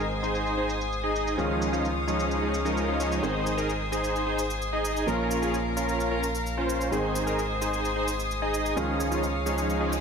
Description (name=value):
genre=EDM, festival progressive house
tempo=130 BPM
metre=4/4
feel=straight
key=Ab major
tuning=A4 = 438 Hz
part: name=clear grand piano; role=accompaniment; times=0.0-10.0 s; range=Ab2 to Bb4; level=-34 LUFS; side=right 2 dB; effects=ping-pong delay
part: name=rich chamber string section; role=sustained chords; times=0.0-10.0 s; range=Bb4 to Eb6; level=-32 LUFS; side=left 2 dB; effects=none
part: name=saturated sub bass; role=bass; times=0.0-10.0 s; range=Ab1 to Db2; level=-34 LUFS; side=equal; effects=none
part: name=shaker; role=drums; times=0.0-10.0 s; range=none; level=-40 LUFS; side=equal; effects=low-pass filter on perc, low-pass filter on room
part: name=supersaw chords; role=riff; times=0.2-9.9 s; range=F3 to Eb5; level=-27 LUFS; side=equal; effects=low-pass filter, ping-pong delay
part: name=reverse cymbal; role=sound effects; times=9.8-10.0 s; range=none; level=-41 LUFS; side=left 5 dB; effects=none
room=moderate lush hall reverb, RT60 2.0 s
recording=none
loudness=-25 LUFS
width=side -6 dB against mid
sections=0.0-10.0 A section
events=reverse cymbal 9.8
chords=0.0 Ab; 1.4 Dbadd9; 3.2 Ab; 5.1 Bbm; 6.9 Ab; 8.8 Dbadd9